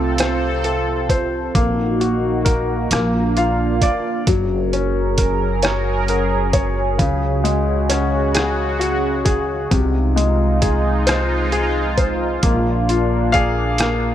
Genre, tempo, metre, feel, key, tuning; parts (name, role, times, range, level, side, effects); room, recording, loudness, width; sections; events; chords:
six-eight pop ballad; 44 BPM (dotted quarters); 6/8; straight; A4 = 440 Hz
clear concert grand piano; accompaniment; 0.0-14.1 s; C3 to F5; -21 LUFS; left 3 dB
sweeping resonant pad; sustained chords; 0.0-14.1 s; C3 to Bb4; -21 LUFS; right 2 dB; chorus
upright bass; bass; 0.0-14.1 s; Gb1 to Db2; -22 LUFS; equal
lo-fi sampler-style drum kit; drums; 0.2-14.0 s; hi-hat, kick drum, rim click; -20 LUFS; right 1 dB; overdrive
light reverb, small room ambience; -16 LUFS; side -11 dB against mid
0.0-14.1 A section
grand piano fill 2.9-4.3, 13.8-14.1
0.0 F/C; 1.5 Ebm/Bb; 2.9 Bb; 4.3 Gbadd9; 7.0 Dbsus4; 9.7 Fm7/C; 12.4 Bb